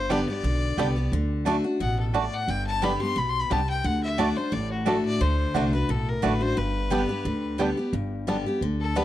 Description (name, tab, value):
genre	bluegrass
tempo	176 BPM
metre	4/4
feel	swing 54% on 8ths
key	G major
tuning	A4 = 440 Hz
part	clear fiddle	melody	0.0-9.0 s	F#4 to C6	-30 LUFS	left 4 dB	none
part	picked steel-string acoustic guitar	accompaniment	0.0-9.0 s	G2 to G4	-27 LUFS	left 2 dB	none
part	upright bass	bass	0.0-9.0 s	G1 to D2	-28 LUFS	equal	none
part	bluegrass banjo	melody	0.1-9.0 s	G3 to D4	-32 LUFS	right 3 dB	none
part	mandolin	stabs	0.1-7.7 s	A3 to A5	-31 LUFS	right 8 dB	none
room	small room reverb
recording	dry, close 1970s-style studio recording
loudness	-23 LUFS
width	side -13 dB against mid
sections	0.0-7.9 A section; 7.9-9.0 A section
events	none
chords	0.0 G; 1.1 D; 2.5 G; 3.8 D; 6.6 G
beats	0.10 0.44 0.78 | 1.12 1.46 1.80 2.14 | 2.48 2.83 3.17 3.51 | 3.85 4.19 4.53 4.87 | 5.21 5.55 5.89 6.23 | 6.57 6.91 7.25 7.59 | 7.93 8.28 8.62 8.96